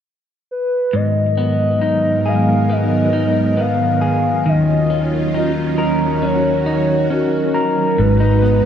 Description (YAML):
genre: dream pop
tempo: 68 BPM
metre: 4/4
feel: straight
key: G# dorian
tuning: A4 = 440 Hz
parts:
  - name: warbly nostalgic lead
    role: melody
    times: 0.5-8.7 s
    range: A#4 to E#5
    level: -20 LUFS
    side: equal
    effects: chorus, tremolo
  - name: string machine, violas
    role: sustained chords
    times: 0.9-8.7 s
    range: D#2 to A#5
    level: -18 LUFS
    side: right 1 dB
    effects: phaser, ensemble chorus
  - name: electric guitar at the edge of break-up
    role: arpeggios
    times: 0.9-8.7 s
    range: G#2 to A#4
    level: -18 LUFS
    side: left 1 dB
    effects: lush chorus, digital delay
  - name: vintage muted fingered electric bass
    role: bass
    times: 8.0-8.6 s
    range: G#1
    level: -16 LUFS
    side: equal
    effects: none
  - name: twinkling granular texture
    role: texture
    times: 8.3-8.7 s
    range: D#5 to F#5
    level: -42 LUFS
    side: left 3 dB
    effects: none
room: moderate lush hall reverb, RT60 1.8 s, digital ambience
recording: none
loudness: -14 LUFS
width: side -9 dB against mid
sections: 0.9-8.0 A section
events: none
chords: 0.0 N.C.; 0.9 G#m7; 4.5 D#m7; 8.0 G#m7